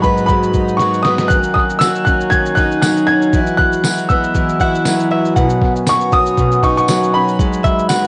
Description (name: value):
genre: acoustic pop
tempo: 118 BPM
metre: 4/4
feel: swing 55% on 16ths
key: B major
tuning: A4 = 438 Hz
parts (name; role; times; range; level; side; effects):
- clear upright piano; melody; 0.0-8.1 s; B5 to G#6; -19 LUFS; equal; cassette tape
- picked plugged-in twelve-string acoustic guitar; accompaniment; 0.0-8.1 s; G#2 to E4; -18 LUFS; equal; none
- pedal harmonium; sustained chords; 0.0-8.1 s; D#3 to B4; -29 LUFS; equal; none
- lo-fi sampler-style drum kit; drums; 0.0-8.1 s; kick drum, shaker, snare drum; -21 LUFS; equal; cassette tape
- tambourine; percussion; 1.8-8.0 s; none; -27 LUFS; equal; none
- direct-recorded clean electric guitar; second line; 4.6-8.1 s; E5 to F#5; -20 LUFS; equal; none
room: moderate small room reverb, RT60 0.6 s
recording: home recording on cassette, nothing above 10.3 kHz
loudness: -14 LUFS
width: mono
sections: 0.0-8.1 A section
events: drum fill 0.8-1.3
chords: 0.0 G#m7; 1.3 D#m7; 3.3 Eadd9; 5.4 Badd9; 7.4 G#m7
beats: 0.29 0.80 | 1.31 1.81 2.32 2.83 | 3.34 3.84 4.35 4.86 | 5.37 5.87 6.38 6.89 | 7.39 7.90